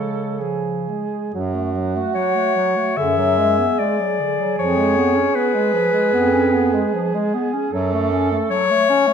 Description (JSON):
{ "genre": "classical, lyrical piece for single-reed quartet", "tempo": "62-80 BPM", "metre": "4/4", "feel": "rubato", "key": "F# minor", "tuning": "A4 = 441 Hz", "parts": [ { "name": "clear clarinet", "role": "melody", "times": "0.0-9.1 s", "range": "B4 to E5", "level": "-19 LUFS", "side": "left 5 dB", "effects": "none" }, { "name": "mellow alto saxophone", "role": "second line", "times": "0.0-9.0 s", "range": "F#4 to A4", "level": "-23 LUFS", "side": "right 8 dB", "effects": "none" }, { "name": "mellow clarinet", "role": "accompaniment", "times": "0.0-9.1 s", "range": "D3 to C#4", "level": "-23 LUFS", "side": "left 2 dB", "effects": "none" }, { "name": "clear bass clarinet", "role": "bass", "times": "0.0-8.4 s", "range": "E#2 to C#3", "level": "-23 LUFS", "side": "right 2 dB", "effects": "none" } ], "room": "moderate recital hall reverb, RT60 1.6 s", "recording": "minimal, uncompressed stereo recording", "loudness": "-16 LUFS", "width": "side -7 dB against mid", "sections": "0.0-1.3 A section; 1.3-9.1 A section", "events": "none", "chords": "0.0 C#; 1.3 F#m; 3.0 G#m7b5/F#; 4.6 C#7/E#; 7.7 F#m" }